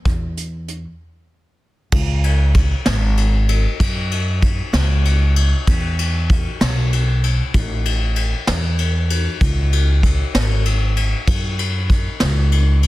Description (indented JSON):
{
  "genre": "indie folk with a building arrangement",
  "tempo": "64 BPM (dotted quarters)",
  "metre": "6/8",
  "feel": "straight",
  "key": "unclear",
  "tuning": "A4 = 443 Hz",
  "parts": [
    { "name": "upright bass", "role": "bass", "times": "0.1-12.9 s", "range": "G#1 to F#2", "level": "-17 LUFS", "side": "equal", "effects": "none" },
    { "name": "vintage brush drum kit", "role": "drums", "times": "0.1-12.9 s", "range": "crash cymbal, hi-hat, kick drum, ride cymbal, snare drum", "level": "-19 LUFS", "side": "equal", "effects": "none" }
  ],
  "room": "little or no reverb",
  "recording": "dense, heavily limited modern master",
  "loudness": "-15 LUFS",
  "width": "side -17 dB against mid",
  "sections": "0.0-1.9 A section; 1.9-12.9 B section",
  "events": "break 1.0-1.9",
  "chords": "none"
}